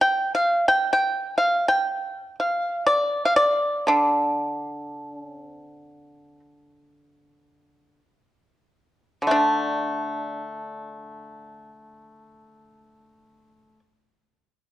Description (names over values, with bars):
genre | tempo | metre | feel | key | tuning
chinese traditional, Chinese solo plucked strings | free time | none | none | D yu mode | A4 = 438 Hz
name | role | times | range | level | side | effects
pipa | solo | 0.0-13.8 s | D3 to G5 | -21 LUFS | equal | none
room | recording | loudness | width
light reverb | worn, warbling old tape, cassette tape, warbly pitch drift | -20 LUFS | side -14 dB against mid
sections
0.0-9.3 A section; 9.3-14.7 B section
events
slowing down 0.0-9.3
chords
none